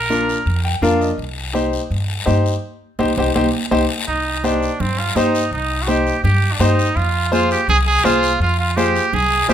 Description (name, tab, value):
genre	latin, cumbia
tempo	166 BPM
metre	4/4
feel	straight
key	C minor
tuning	A4 = 439 Hz
part	bright trumpet	second line	0.0-0.6, 4.1-9.5 s	C4 to Bb4	-19 LUFS	right 3 dB	none
part	upright bass	bass	0.0-9.5 s	Bb1 to G2	-20 LUFS	equal	none
part	bright upright piano	accompaniment	0.1-9.5 s	D4 to G5	-19 LUFS	left 2 dB	none
part	congas	percussion	0.1-9.5 s	none	-24 LUFS	right 2 dB	none
part	guiro	percussion	0.1-9.5 s	none	-29 LUFS	left 6 dB	none
room	moderate large studio reverb, RT60 0.8 s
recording	minimal, uncompressed stereo recording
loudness	-15 LUFS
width	side -10 dB against mid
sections	0.0-4.1 A section; 4.1-9.5 A section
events	trumpet solo 0.0-4.1; upright piano fill 0.5-1.2; band accent 2.6-4.1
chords	0.0 Bb; 1.2 Cm; 7.0 Fm